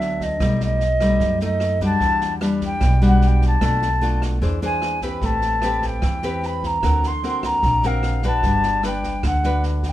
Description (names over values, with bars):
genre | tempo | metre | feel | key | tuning
bossa nova | 150 BPM | 4/4 | straight | G major | A4 = 444 Hz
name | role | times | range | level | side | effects
silver concert flute | melody | 0.0-9.9 s | Eb5 to C6 | -22 LUFS | equal | none
nylon-string guitar | accompaniment | 0.0-9.9 s | B2 to C5 | -24 LUFS | left 2 dB | none
upright bass | bass | 0.0-9.9 s | G1 to F#2 | -22 LUFS | equal | none
open jazz drum kit | drums | 0.0-9.9 s | kick drum, rim click, snare drum | -27 LUFS | right 1 dB | none
room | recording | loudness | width
light reverb | minimal, uncompressed stereo recording | -17 LUFS | side -13 dB against mid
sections
0.0-9.9 A section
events
none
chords
0.4 B7b13; 2.0 Em9; 3.6 Bm7b5; 4.4 E7b13; 5.2 Am9; 6.8 D7alt; 8.4 Gmaj7